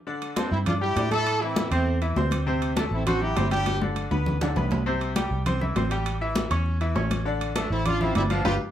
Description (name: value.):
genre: latin, salsa.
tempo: 200 BPM.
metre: 4/4.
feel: straight.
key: C major.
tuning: A4 = 437 Hz.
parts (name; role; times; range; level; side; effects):
bright grand piano; accompaniment; 0.1-8.5 s; C3 to D6; -29 LUFS; left 1 dB; none.
congas; percussion; 0.1-8.5 s; none; -30 LUFS; left 2 dB; none.
timbales; percussion; 0.2-8.5 s; none; -33 LUFS; right 3 dB; none.
clear horn section; melody; 0.4-3.8, 7.6-8.5 s; G3 to A4; -27 LUFS; right 1 dB; none.
vintage muted fingered electric bass; bass; 0.5-8.6 s; G1 to A2; -27 LUFS; equal; none.
room: wet studio ambience, RT60 0.4 s.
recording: heard from further back in the room.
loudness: -22 LUFS.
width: side -10 dB against mid.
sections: 0.1-8.7 A section.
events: drum fill 3.7-4.9; band accent 8.5.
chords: 0.1 Csus2; 1.3 Am; 2.5 D7; 3.7 G; 4.9 C; 6.1 A7; 7.3 Dm7/A.